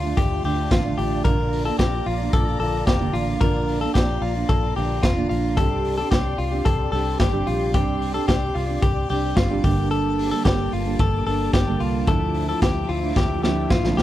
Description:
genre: jangly indie pop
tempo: 111 BPM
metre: 4/4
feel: straight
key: unclear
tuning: A4 = 440 Hz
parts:
  - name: fingerpicked steel-string acoustic guitar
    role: accompaniment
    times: 0.0-14.0 s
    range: G2 to A4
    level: -26 LUFS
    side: right 5 dB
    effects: none
  - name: string machine, violins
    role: sustained chords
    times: 0.0-14.0 s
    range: F3 to D6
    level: -32 LUFS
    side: left 1 dB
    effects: ensemble chorus
  - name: direct-recorded clean electric guitar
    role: arpeggios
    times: 0.0-14.0 s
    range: F4 to Bb4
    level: -26 LUFS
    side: left 5 dB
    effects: none
  - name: vintage muted fingered electric bass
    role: bass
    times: 0.0-14.0 s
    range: F1 to D2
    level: -26 LUFS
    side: equal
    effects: none
  - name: raw garage drum kit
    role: drums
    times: 0.2-14.0 s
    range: hi-hat, kick drum, snare drum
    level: -23 LUFS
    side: equal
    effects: none
room: little or no reverb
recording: none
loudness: -19 LUFS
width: side -13 dB against mid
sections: 0.0-14.0 A section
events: drum fill 13.2-14.0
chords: 0.0 Dm; 1.2 Bb; 5.6 Gmadd9; 12.1 Dmadd9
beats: 0.17 0.71 | 1.25 1.79 2.33 2.87 | 3.41 3.95 4.49 5.03 | 5.58 6.12 6.66 7.20 | 7.74 8.28 8.82 9.37 | 9.91 10.45 10.99 11.54 | 12.08 12.62 13.16 13.70

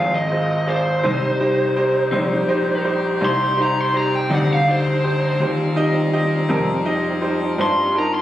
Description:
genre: slow blues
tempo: 55 BPM (dotted quarters)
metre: 12/8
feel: straight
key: C minor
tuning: A4 = 440 Hz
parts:
  - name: lead guitar through a small cranked amp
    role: melody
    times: 0.0-8.2 s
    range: C5 to C6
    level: -21 LUFS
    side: equal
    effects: overdrive
  - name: bright upright piano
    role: accompaniment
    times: 0.0-8.2 s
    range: Eb4 to Eb5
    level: -23 LUFS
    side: right 1 dB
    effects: none
  - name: clean electric guitar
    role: accompaniment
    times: 0.0-6.7 s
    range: C3 to Ab4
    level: -24 LUFS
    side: left 2 dB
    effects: tremolo
  - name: clear saxophone section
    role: sustained chords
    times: 0.0-8.2 s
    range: C4 to Ab4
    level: -29 LUFS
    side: left 1 dB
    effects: none
  - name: tonewheel organ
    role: sustained chords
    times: 0.0-8.2 s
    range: G3 to C5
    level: -26 LUFS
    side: equal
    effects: slow rotary speaker, overdrive, chorus vibrato
  - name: warm grand piano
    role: bass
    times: 0.0-8.2 s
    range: Ab1 to G2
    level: -22 LUFS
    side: left 1 dB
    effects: none
room: moderate studio reverb, RT60 0.6 s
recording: recorded on a phone in the room, club reverb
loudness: -17 LUFS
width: side -13 dB against mid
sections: 0.0-8.2 A section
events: lead electric guitar solo 0.0-8.2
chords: 0.0 Fm; 1.0 Cm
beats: | 1.04 2.13 3.22 4.31 | 5.40 6.49 7.58

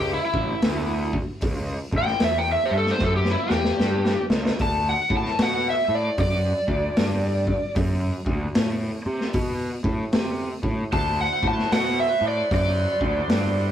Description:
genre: blues rock power trio and southern rock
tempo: 76 BPM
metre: 4/4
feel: swing 63% on 8ths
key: unclear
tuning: A4 = 440 Hz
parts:
  - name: overdriven slide guitar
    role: melody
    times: 0.0-13.7 s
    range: E4 to A5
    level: -24 LUFS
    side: equal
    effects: none
  - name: fuzz picked electric bass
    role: bass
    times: 0.0-13.7 s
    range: A1 to C3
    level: -26 LUFS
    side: equal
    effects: overdrive
  - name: vintage drum kit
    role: drums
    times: 0.3-13.5 s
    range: hi-hat, kick drum, snare drum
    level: -26 LUFS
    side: equal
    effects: none
  - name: overdriven tonewheel organ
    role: sustained chords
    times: 10.9-13.7 s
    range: E4 to C5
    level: -31 LUFS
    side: right 3 dB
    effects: slow rotary speaker
room: light reverb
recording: rough rehearsal-room recording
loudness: -21 LUFS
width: side -10 dB against mid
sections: 0.0-13.7 A section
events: electric slide guitar solo 0.0-13.7; drum fill 3.0-4.6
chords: 0.0 A7; 4.6 D7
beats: 0.63 | 1.42 2.22 3.01 3.80 | 4.59 5.39 6.18 6.97 | 7.76 8.55 9.35 10.14 | 10.93 11.72 12.51 13.30

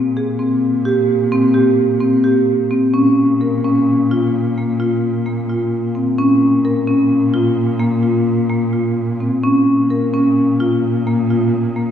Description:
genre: contemporary instrumental, chamber music in an uneven meter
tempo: 259 BPM (eighths)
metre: 7/8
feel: straight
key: Bb dorian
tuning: A4 = 440 Hz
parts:
  - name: muted cello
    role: bass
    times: 0.0-11.9 s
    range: Bb2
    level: -19 LUFS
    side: right 1 dB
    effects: none
  - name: marimba with medium mallets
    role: arpeggios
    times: 0.2-11.9 s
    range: Bb3 to Bb4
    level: -15 LUFS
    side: left 1 dB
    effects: none
room: wet concert hall reverb, RT60 1.8 s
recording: heard from further back in the room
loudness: -13 LUFS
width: side -9 dB against mid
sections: 0.0-2.9 A section; 2.9-11.9 B section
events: none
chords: 0.0 Abmaj9/Bb (rootless); 2.9 Bbm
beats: 0.16 0.39 0.62 0.85 1.09 | 1.32 1.55 1.78 2.01 2.25 2.48 2.71 | 2.95 3.18 3.41 3.64 3.88 4.11 4.34 | 4.57 4.80 5.03 5.26 5.49 5.72 5.95 | 6.18 6.41 6.64 6.87 7.10 7.33 7.56 | 7.79 8.03 8.26 8.49 8.72 8.96 9.20 | 9.43 9.67 9.90 10.13 10.37 10.60 10.83 | 11.06 11.29 11.53 11.76

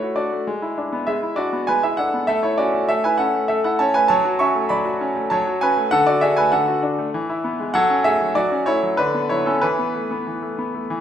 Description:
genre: classical-period piano sonatina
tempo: 99 BPM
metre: 3/4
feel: straight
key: unclear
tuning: A4 = 440 Hz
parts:
  - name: bright concert grand piano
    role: solo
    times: 0.0-11.0 s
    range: D3 to C#6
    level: -18 LUFS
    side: equal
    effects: none
room: moderate recital hall reverb, RT60 1.7 s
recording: minimal, uncompressed stereo recording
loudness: -18 LUFS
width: side -9 dB against mid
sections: 0.0-11.0 A section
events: none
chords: 0.5 E7/G#; 2.3 A; 4.1 F#m; 5.9 D; 7.1 E; 7.8 F#m; 9.0 Bm/D; 9.6 Esus4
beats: | 0.47 1.07 1.68 | 2.28 2.89 3.49 | 4.10 4.70 5.31 | 5.92 6.53 7.14 | 7.75 8.37 8.99 | 9.63 10.27 10.90

